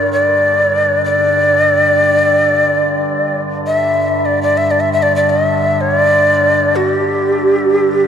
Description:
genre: world meditative, free-time meditation music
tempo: free time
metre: none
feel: none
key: unclear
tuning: A4 = 440 Hz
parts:
  - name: breathy Native American-style cedar flute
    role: melody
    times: 0.0-8.1 s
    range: G4 to E5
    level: -12 LUFS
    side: equal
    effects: diffuse ambient delay
  - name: overtone-sweeping drone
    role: drone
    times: 0.0-8.1 s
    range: G2 to D3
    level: -19 LUFS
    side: equal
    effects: chorus, built-in reverb
  - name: glass harmonica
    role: texture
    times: 7.4-8.1 s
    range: G4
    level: -17 LUFS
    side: right 5 dB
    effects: none
room: wet cathedral reverb, RT60 4.7 s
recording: cassette tape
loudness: -11 LUFS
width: side -8 dB against mid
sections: 0.0-8.1 A section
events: none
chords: none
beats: free time

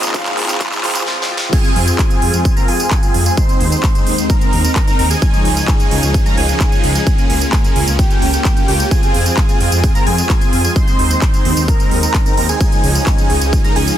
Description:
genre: EDM, festival progressive house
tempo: 130 BPM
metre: 4/4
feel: straight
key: F minor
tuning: A4 = 438 Hz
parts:
  - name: airy dreamy lead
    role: melody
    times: 0.0-0.6 s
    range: Eb5 to F5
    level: -29 LUFS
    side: equal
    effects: chorus, ping-pong delay
  - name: clear concert grand piano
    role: accompaniment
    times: 0.0-1.6 s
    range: F3 to F4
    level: -28 LUFS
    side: equal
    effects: sidechain pumping, ping-pong delay
  - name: lush unison pad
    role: sustained chords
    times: 0.0-14.0 s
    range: Db2 to Bb4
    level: -25 LUFS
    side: left 1 dB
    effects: chorus, phaser, sidechain pumping
  - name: supersaw chords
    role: riff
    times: 0.0-14.0 s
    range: F3 to C5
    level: -20 LUFS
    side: right 1 dB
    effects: phaser, cassette tape, sidechain pumping, ping-pong delay
  - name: big-room dance drum kit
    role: drums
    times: 0.0-14.0 s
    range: crash cymbal, handclaps, hi-hat, snare drum, tambourine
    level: -21 LUFS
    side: right 2 dB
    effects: high-pass filter on snare, high-pass filter on hats, high-pass filter on perc, high-pass filter on cymbals
  - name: riser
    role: sound effects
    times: 0.0-1.1 s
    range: none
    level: -32 LUFS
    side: right 2 dB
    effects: none
  - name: electronic kick drum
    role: drums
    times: 0.1-13.6 s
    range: none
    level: -14 LUFS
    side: equal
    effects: none
  - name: wide unison lead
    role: arpeggios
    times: 1.5-14.0 s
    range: G5 to C6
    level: -22 LUFS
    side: left 1 dB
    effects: wide subtle chorus, sidechain pumping, ping-pong delay
  - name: detuned saw bass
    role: bass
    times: 1.8-13.9 s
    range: Db2 to F2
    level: -17 LUFS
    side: equal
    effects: sidechain pumping
room: little or no reverb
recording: dense, heavily limited modern master, high-pass filter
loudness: -12 LUFS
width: side -11 dB against mid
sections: 0.0-1.5 A section; 1.5-14.0 B section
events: build-up 0.0-1.5; drum fill 0.0-1.1, 1.1-1.5; riser 0.0-1.1; drop 1.5-14.0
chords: 0.0 Bbm/Db; 1.5 Fm; 3.4 Ab/Eb; 5.2 Dbadd9; 7.1 Bbm/Db; 8.9 Fm; 10.8 Ab/Eb; 12.6 Dbadd9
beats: 0.14 0.60 1.07 | 1.53 1.99 2.45 2.91 | 3.37 3.84 4.30 4.76 | 5.22 5.68 6.14 6.61 | 7.07 7.53 7.99 8.45 | 8.91 9.37 9.84 10.30 | 10.76 11.22 11.68 12.14 | 12.61 13.07 13.53

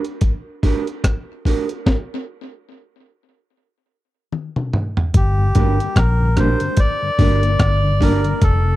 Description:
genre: dub reggae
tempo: 73 BPM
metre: 4/4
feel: swing 58% on 16ths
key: G minor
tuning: A4 = 439 Hz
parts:
  - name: breakbeat sampler-style drum kit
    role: drums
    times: 0.0-8.6 s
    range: hi-hat, kick drum, rim click, snare drum, toms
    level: -17 LUFS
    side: equal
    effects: none
  - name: electric guitar at the edge of break-up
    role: accompaniment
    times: 0.6-8.2 s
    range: D4 to Bb4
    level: -25 LUFS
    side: right 6 dB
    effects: spring reverb, tape echo
  - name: melodica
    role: melody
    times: 5.2-8.8 s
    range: G4 to D5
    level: -22 LUFS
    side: left 1 dB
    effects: tape echo
  - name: vintage muted fingered electric bass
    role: bass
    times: 5.2-8.8 s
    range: F1 to Bb1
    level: -17 LUFS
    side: equal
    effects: none
  - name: mellow tonewheel organ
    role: accompaniment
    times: 5.4-8.7 s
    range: F2 to D4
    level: -26 LUFS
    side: left 3 dB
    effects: chorus vibrato, slow rotary speaker, tape echo
room: little or no reverb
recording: dry, close 1970s-style studio recording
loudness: -15 LUFS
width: side -16 dB against mid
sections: 0.0-5.1 A section; 5.1-8.8 B section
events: break 0.0-5.1; stop 1.9-5.1; drum fill 4.3-5.1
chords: 0.0 Gm; 1.9 N.C.; 5.1 Gm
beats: 0.22 1.04 | 1.86 2.68 3.50 4.32 | 5.14 5.96 6.78 7.60 | 8.42

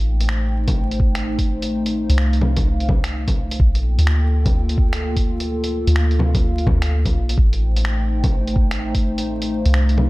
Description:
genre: future garage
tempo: 127 BPM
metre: 4/4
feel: swing 64% on 16ths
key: unclear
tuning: A4 = 440 Hz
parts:
  - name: dark analog pad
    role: sustained chords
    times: 0.0-10.1 s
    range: A3 to G5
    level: -25 LUFS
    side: equal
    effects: chorus, sidechain pumping
  - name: soft 808-style bass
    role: bass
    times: 0.0-10.1 s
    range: A1 to D2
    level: -19 LUFS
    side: equal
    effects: sidechain pumping
  - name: lo-fi sampler-style drum kit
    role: drums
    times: 0.2-10.1 s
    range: bongos, finger snaps, hi-hat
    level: -26 LUFS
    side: equal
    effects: none
  - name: electronic kick drum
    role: drums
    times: 0.7-9.0 s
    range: none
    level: -19 LUFS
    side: equal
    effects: none
room: little or no reverb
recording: vinyl crackle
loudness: -16 LUFS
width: side -20 dB against mid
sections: 0.0-10.1 A section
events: none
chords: 0.0 Am7b5; 3.6 Gm7/Bb; 7.4 Am7b5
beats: 0.29 0.76 1.24 | 1.71 2.18 2.65 3.13 | 3.60 4.07 4.54 5.02 | 5.49 5.96 6.43 6.91 | 7.38 7.85 8.32 8.79 | 9.27 9.74

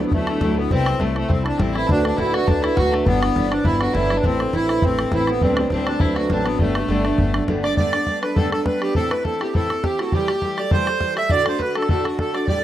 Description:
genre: celtic folk, Celtic reel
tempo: 204 BPM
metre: 4/4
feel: swing 54% on 8ths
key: G major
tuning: A4 = 440 Hz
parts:
  - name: accordion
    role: melody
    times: 0.0-12.6 s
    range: A3 to E5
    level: -24 LUFS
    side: right 2 dB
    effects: none
  - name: cimbalom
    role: second line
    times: 0.0-7.8 s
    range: A2 to D4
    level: -26 LUFS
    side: right 3 dB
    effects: none
  - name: warm fiddle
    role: second line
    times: 0.0-12.6 s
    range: A3 to E5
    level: -29 LUFS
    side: left 4 dB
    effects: none
  - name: fingerpicked steel-string acoustic guitar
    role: accompaniment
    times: 0.0-12.6 s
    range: D2 to G4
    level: -23 LUFS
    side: left 1 dB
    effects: none
  - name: upright bass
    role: bass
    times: 0.0-7.7 s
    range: G1 to D2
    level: -25 LUFS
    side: equal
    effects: none
  - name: bodhran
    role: percussion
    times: 0.1-12.6 s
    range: none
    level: -22 LUFS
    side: equal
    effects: none
room: studio ambience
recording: rough home demo mix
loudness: -17 LUFS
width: side -12 dB against mid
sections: 0.0-7.8 A section; 7.8-12.6 B section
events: none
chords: 0.0 Dadd9; 0.7 C6; 1.9 D; 3.1 G6; 4.2 Am; 5.4 D7sus4; 6.0 D7; 6.6 Gadd9; 9.0 Am; 10.1 C6; 11.3 D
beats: 0.12 0.42 | 0.71 1.00 1.30 1.59 | 1.89 2.18 2.48 2.77 | 3.06 3.36 3.65 3.95 | 4.24 4.54 4.83 5.13 | 5.42 5.72 6.01 6.30 | 6.60 6.89 7.19 7.48 | 7.78 8.07 8.36 8.66 | 8.95 9.25 9.54 9.83 | 10.13 10.42 10.72 11.01 | 11.30 11.60 11.89 12.19 | 12.48

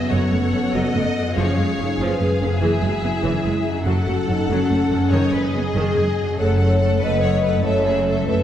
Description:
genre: cinematic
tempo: 96 BPM (dotted quarters)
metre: 12/8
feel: straight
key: F# dorian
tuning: A4 = 440 Hz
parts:
  - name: rich symphonic violin section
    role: melody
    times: 0.0-8.4 s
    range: D#5 to F#5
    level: -31 LUFS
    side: left 4 dB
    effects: none
  - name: rich symphonic violin section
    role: second line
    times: 0.0-8.4 s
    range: G#4 to D#5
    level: -28 LUFS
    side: left 2 dB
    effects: none
  - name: warm symphonic viola section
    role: accompaniment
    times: 0.0-8.4 s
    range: D#3 to A4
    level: -26 LUFS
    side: right 2 dB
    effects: none
  - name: dark French horn section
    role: sustained chords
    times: 0.0-8.4 s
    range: B3 to D#5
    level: -23 LUFS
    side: left 1 dB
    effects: none
  - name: concert harp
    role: arpeggios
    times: 0.0-8.4 s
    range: F#2 to A4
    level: -27 LUFS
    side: left 1 dB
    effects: none
  - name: rich symphonic cello section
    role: bass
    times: 0.1-8.4 s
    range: F#2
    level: -24 LUFS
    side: right 1 dB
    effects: none
  - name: rich symphonic double bass section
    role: bass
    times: 0.1-8.4 s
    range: F#1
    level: -25 LUFS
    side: right 1 dB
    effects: none
room: wet scoring stage reverb, RT60 1.6 s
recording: heard from further back in the room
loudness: -17 LUFS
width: side -10 dB against mid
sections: 0.0-8.4 A section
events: none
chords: 0.1 F#m; 1.4 C#/F#; 2.6 E/F#; 3.9 F#m; 5.1 G#m/F#; 6.4 F#m; 7.6 A/F#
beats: 0.11 0.74 | 1.36 1.99 2.62 3.24 | 3.87 4.49 5.12 5.76 | 6.39 7.01 7.64 8.27

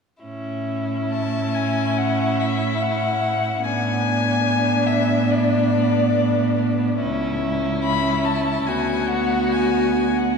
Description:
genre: classical, slow romantic movement for string quartet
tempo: 67-74 BPM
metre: 4/4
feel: rubato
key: A major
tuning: A4 = 440 Hz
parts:
  - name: warm violin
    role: second line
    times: 0.2-10.4 s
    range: D4 to F#4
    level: -25 LUFS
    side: left 2 dB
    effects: none
  - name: clear viola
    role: accompaniment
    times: 0.2-10.4 s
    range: B3 to C#4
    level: -24 LUFS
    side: equal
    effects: none
  - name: rich cello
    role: bass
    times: 0.2-10.4 s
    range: C#2 to A2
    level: -25 LUFS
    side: right 5 dB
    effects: none
  - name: rich violin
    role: melody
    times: 1.1-10.4 s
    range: D5 to B5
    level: -24 LUFS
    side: left 6 dB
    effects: none
room: wet church reverb, RT60 3.3 s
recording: dark, warm production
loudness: -18 LUFS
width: side -5 dB against mid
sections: 0.2-10.4 A section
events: none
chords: 0.2 A; 3.6 G#dim/A; 7.0 C#m7; 8.7 Bm/D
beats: | 0.23 1.11 1.98 2.82 | 3.65 4.47 5.32 6.17 | 7.02 7.85 8.68 9.53

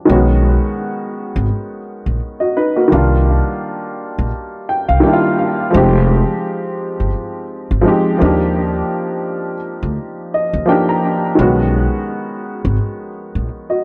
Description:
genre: lo-fi hip hop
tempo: 85 BPM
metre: 4/4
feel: swing 57% on 16ths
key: unclear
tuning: A4 = 438 Hz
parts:
  - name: dark upright piano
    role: accompaniment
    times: 0.0-13.8 s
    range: D#3 to Bb5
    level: -18 LUFS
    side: equal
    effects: cassette tape, low-pass filter, analog delay
  - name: upright bass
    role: bass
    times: 0.1-13.5 s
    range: F1 to Eb2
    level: -18 LUFS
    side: equal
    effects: none
room: moderate spring reverb, RT60 1.6 s, small room ambience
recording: echo-heavy mix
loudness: -16 LUFS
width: mono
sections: 0.1-13.8 A section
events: none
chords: 0.1 B69; 2.9 Cm11; 5.7 Fm9; 8.2 Ebmaj9; 11.4 B69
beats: | 0.08 0.79 1.50 2.20 | 2.91 3.61 4.32 5.02 | 5.73 6.44 7.14 7.85 | 8.55 9.26 9.96 10.67 | 11.38 12.08 12.79 13.49

